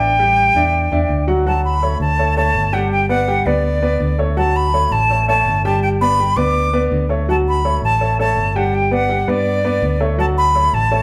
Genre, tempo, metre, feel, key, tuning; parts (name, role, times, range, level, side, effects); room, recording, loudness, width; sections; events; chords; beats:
latin; 165 BPM; 4/4; straight; D major; A4 = 441 Hz
bright silver concert flute; melody; 0.0-11.0 s; D5 to D6; -19 LUFS; equal
warm upright piano; accompaniment; 0.0-11.0 s; F#3 to G5; -22 LUFS; equal
fingered electric bass; bass; 0.0-11.0 s; G1 to G2; -22 LUFS; equal
wet large studio reverb, RT60 1.3 s; band playing live in one room; -16 LUFS; mono
0.0-1.5 A section; 1.5-11.0 B section
0.0 A7sus4; 1.5 Dmaj7; 2.9 Gmaj7; 4.4 Dmaj7; 5.8 G; 7.3 Dmaj7; 8.7 Gmaj7; 10.2 Dmaj7
| 0.01 0.38 0.74 1.10 | 1.46 1.83 2.19 2.55 | 2.92 3.28 3.64 4.01 | 4.37 4.73 5.10 5.46 | 5.82 6.19 6.55 6.91 | 7.28 7.64 8.01 8.37 | 8.73 9.10 9.46 9.82 | 10.19 10.55 10.92